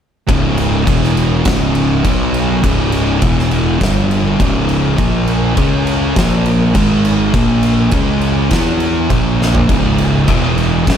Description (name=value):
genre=stoner and doom metal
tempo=102 BPM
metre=4/4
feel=straight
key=C# dorian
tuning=A4 = 440 Hz
part: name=thick fuzz guitar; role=riff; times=0.3-11.0 s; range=C#2 to E4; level=-16 LUFS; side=left 8 dB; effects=distortion
part: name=thick fuzz guitar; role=riff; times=0.3-11.0 s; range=C#2 to E4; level=-17 LUFS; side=right 9 dB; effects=distortion
part: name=fuzz fingered electric bass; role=bass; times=0.3-11.0 s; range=C#1 to E2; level=-19 LUFS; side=equal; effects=overdrive
part: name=oversized low-tuned drum kit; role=drums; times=0.3-11.0 s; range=crash cymbal, kick drum, snare drum, toms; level=-17 LUFS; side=equal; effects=none
room=light reverb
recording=none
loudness=-11 LUFS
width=side -8 dB against mid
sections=0.3-11.0 A section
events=drum fill 9.4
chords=0.3 C#5; 0.9 E5; 1.5 C#5; 2.0 B5; 2.6 C#5; 3.2 E5; 3.8 G5; 4.4 C#5; 5.0 A#5; 5.6 C#5; 6.2 A#5; 6.8 G#5; 7.3 A#5; 7.9 C#5; 8.5 E5; 9.1 A#5; 9.7 C#5; 10.3 E5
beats=| 0.29 0.88 1.46 2.05 | 2.64 3.22 3.81 4.40 | 4.99 5.58 6.16 6.75 | 7.34 7.93 8.52 9.11 | 9.70 10.29 10.87